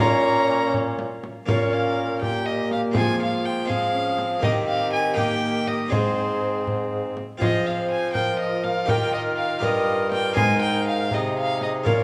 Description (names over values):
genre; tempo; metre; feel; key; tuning
classical, renaissance-style consort dance; 81 BPM (dotted quarters); 6/8; straight; Bb dorian; A4 = 440 Hz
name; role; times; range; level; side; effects
bright tenor recorder; melody; 0.0-12.0 s; F4 to Bb5; -31 LUFS; equal; none
rich violin; second line; 0.0-12.0 s; C5 to Ab5; -28 LUFS; equal; none
harpsichord; accompaniment; 0.0-12.0 s; G2 to C5; -31 LUFS; equal; none
warm viola; accompaniment; 0.0-12.0 s; Bb3 to F4; -33 LUFS; equal; none
clear bassoon; bass; 0.0-12.0 s; G2 to F3; -30 LUFS; equal; none
frame drum; percussion; 0.7-12.0 s; none; -31 LUFS; equal; none
room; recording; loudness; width
wet recital hall reverb, RT60 1.7 s; none; -23 LUFS; mono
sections
0.0-1.5 A section; 1.5-12.0 B section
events
none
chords
0.0 Bbm; 3.0 Fm; 4.4 Eb; 5.9 Ab; 7.4 Fm; 8.9 Eb; 10.4 Ab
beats
0.74 | 1.49 2.23 | 2.96 3.70 | 4.43 5.17 | 5.92 6.67 | 7.42 8.16 | 8.90 9.63 | 10.37 11.11 | 11.87